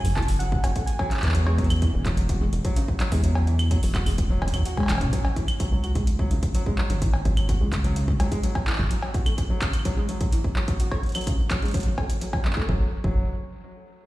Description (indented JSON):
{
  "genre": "IDM",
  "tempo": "127 BPM",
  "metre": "4/4",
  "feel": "straight",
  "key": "unclear",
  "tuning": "A4 = 438 Hz",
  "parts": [
    { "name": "warbly lo-fi synth keys", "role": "melody", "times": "0.0-1.2 s", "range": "F#5 to A5", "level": "-34 LUFS", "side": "right 1 dB", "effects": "chorus, tape echo" },
    { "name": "booming analog drum machine", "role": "drums", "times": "0.0-12.7 s", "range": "claves, cowbell, handclaps, hi-hat, snare drum, toms", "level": "-31 LUFS", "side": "equal", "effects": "tape echo" },
    { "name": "felt-muted upright piano", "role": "arpeggios", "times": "0.1-13.3 s", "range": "F#2 to F#4", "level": "-31 LUFS", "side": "equal", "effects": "low-pass filter, dub echo" },
    { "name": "rubbery square bass", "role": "bass", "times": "0.1-8.9, 12.7-13.3 s", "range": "E1 to E2", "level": "-23 LUFS", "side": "equal", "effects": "none" },
    { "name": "electronic kick drum", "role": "drums", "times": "0.2-13.1 s", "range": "none", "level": "-24 LUFS", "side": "equal", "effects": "none" }
  ],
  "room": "light reverb",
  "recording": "played on a big sound system in a bare room, stone room reverb",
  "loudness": "-21 LUFS",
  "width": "side -17 dB against mid",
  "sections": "0.0-5.1 A section; 5.1-12.7 B section; 12.7-14.1 C section",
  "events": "drum fill 4.8-5.1; filter sweep on felt piano 5.1-12.7",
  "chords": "0.0 F#7sus2; 1.3 Esus2; 5.1 C#5; 8.9 N.C."
}